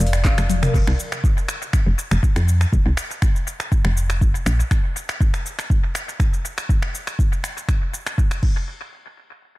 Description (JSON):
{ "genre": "afro house", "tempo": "121 BPM", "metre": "4/4", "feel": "straight", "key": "unclear", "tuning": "A4 = 438 Hz", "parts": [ { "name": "marimba with soft mallets", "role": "arpeggios", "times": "0.0-0.7 s", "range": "Bb4 to F5", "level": "-30 LUFS", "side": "left 2 dB", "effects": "sidechain pumping, analog delay" }, { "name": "woody FM bass", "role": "bass", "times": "0.0-4.6 s", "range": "F1 to F2", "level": "-19 LUFS", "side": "equal", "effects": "sidechain pumping" }, { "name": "afro-pop drum kit", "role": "drums", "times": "0.0-8.5 s", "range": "crash cymbal, finger snaps, handclaps, hi-hat, shaker, toms", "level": "-26 LUFS", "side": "left 1 dB", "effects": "studio reverb, analog delay" }, { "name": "electronic kick drum", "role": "drums", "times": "0.2-8.5 s", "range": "none", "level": "-18 LUFS", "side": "equal", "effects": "studio reverb" } ], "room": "little or no reverb", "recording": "echo-heavy mix", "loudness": "-18 LUFS", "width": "side -19 dB against mid", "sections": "0.7-8.7 A section", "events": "drum fill 0.5", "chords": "0.0 Bb/F; 0.7 F5; 8.4 N.C.", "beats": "0.24 | 0.74 1.24 1.73 2.23 | 2.72 3.22 3.72 4.21 | 4.71 5.20 5.70 6.20 | 6.69 7.19 7.68 8.18" }